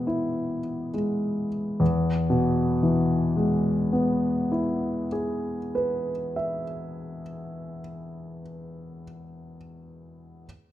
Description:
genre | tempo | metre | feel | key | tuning
classical, romantic nocturne for solo piano | 33-39 BPM | 4/4 | rubato | E major | A4 = 440 Hz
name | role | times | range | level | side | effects
warm grand piano | solo | 0.0-10.5 s | E2 to E6 | -25 LUFS | left 1 dB | none
room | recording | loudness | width
light reverb | minimal, uncompressed stereo recording | -23 LUFS | side -13 dB against mid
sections
0.0-1.8 A section; 1.8-8.1 B section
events
slowing down 0.0-1.8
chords
0.0 E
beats
0.06 | 1.80 3.38 4.97 6.54

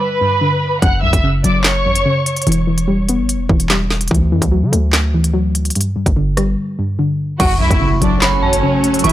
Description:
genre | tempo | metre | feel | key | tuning
hip hop, drill | 146 BPM | 4/4 | half-time | F# phrygian | A4 = 440 Hz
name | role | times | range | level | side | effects
warm symphonic violin section | melody | 0.0-2.4, 7.4-9.1 s | C#4 to F#6 | -18 LUFS | right 1 dB | low-pass filter, tape echo
soft round pluck | accompaniment | 0.0-9.1 s | F#2 to B3 | -18 LUFS | left 1 dB | chorus, low-pass filter
hard-hitting 808-style bass | bass | 0.8-9.1 s | E1 to D3 | -18 LUFS | equal | none
drill drum kit | drums | 0.8-9.1 s | crash cymbal, handclaps, hi-hat, kick drum, rim click, snare drum | -17 LUFS | equal | none
dark detuned synth bell | second line | 7.4-9.1 s | A5 to C#6 | -20 LUFS | right 2 dB | chorus, tape echo
granular cloud pad | sustained chords | 8.1-9.1 s | C#3 to F#4 | -22 LUFS | equal | built-in reverb
impact | sound effects | 7.4-9.0 s | none | -24 LUFS | equal | none
room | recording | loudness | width
little or no reverb | dry, gritty hardware recording, transformer saturation | -13 LUFS | side -13 dB against mid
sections
0.0-7.4 A section; 7.4-9.1 B section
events
break 6.6-7.4; impact 7.4-9.0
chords
0.0 G; 0.8 F#5; 2.5 Em; 4.1 Dadd9; 5.8 G5; 7.4 F#m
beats
0.00 0.41 | 0.82 1.23 1.65 2.06 | 2.47 2.88 3.29 3.70 | 4.11 4.52 4.93 5.34 | 5.75 6.17 6.58 6.99 | 7.40 7.81 8.22 8.63 | 9.04

